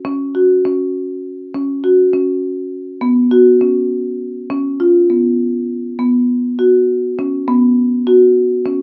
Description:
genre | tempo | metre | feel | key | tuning
contemporary instrumental, contemporary | 202 BPM (eighths) | 5/8 | straight | unclear | A4 = 439 Hz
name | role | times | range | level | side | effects
marimba with medium mallets | solo | 0.0-8.8 s | Cb4 to Gb4 | -15 LUFS | equal | none
room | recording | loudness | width
moderate small room reverb, RT60 0.5 s | none | -14 LUFS | mono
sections
0.0-6.0 A section; 6.0-8.8 B section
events
none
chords
none

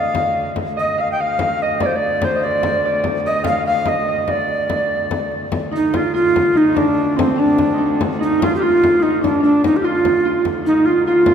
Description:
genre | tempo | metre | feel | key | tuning
medieval dance | 97 BPM (dotted quarters) | 6/8 | straight | D phrygian | A4 = 438 Hz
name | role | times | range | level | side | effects
tenor recorder | melody | 0.0-11.3 s | C4 to G5 | -16 LUFS | right 1 dB | none
Celtic harp | second line | 0.0-11.3 s | C4 to F5 | -23 LUFS | right 2 dB | none
rich viola da gamba | drone | 0.0-11.3 s | D2 | -28 LUFS | left 1 dB | none
frame drum | percussion | 0.1-11.3 s | none | -25 LUFS | left 4 dB | none
buzzing marimba with medium mallets | second line | 5.7-11.3 s | C4 to F4 | -23 LUFS | left 3 dB | none
room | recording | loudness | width
wet church reverb, RT60 3.9 s | minimal, uncompressed stereo recording | -15 LUFS | side -8 dB against mid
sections
0.0-5.5 A section; 5.5-11.3 A section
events
none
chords
none

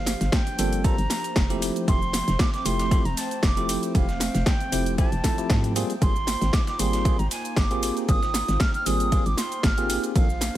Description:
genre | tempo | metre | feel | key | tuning
deep house | 116 BPM | 4/4 | swing 54% on 16ths | unclear | A4 = 440 Hz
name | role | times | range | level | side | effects
concert flute | melody | 0.0-10.6 s | F5 to F6 | -30 LUFS | right 2 dB | ping-pong delay
hollow soft pad | sustained chords | 0.0-10.6 s | F3 to G5 | -34 LUFS | equal | chorus, sidechain pumping
hollow knocking FM bass | bass | 0.0-10.5 s | F1 to Ab2 | -27 LUFS | equal | sidechain pumping
dusty soul sampler-style drum kit | drums | 0.1-10.5 s | hi-hat, ride cymbal, snare drum | -39 LUFS | right 2 dB | high-pass filter on cymbals, studio reverb, high-pass filter on snare, high-pass filter on hats
punchy analog drum machine | drums | 0.1-10.5 s | hi-hat, shaker, snare drum | -29 LUFS | equal | overdrive, studio reverb
electronic kick drum | drums | 0.3-10.3 s | none | -22 LUFS | equal | overdrive, studio reverb
bell-like tine electric piano | stabs | 0.6-10.3 s | F3 to A4 | -29 LUFS | equal | medium stereo tremolo, sidechain pumping
room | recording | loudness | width
little or no reverb | vinyl crackle | -21 LUFS | side -13 dB against mid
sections
0.0-10.6 A section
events
none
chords
0.0 Gm11; 1.6 Fmaj9; 5.8 Abmaj13

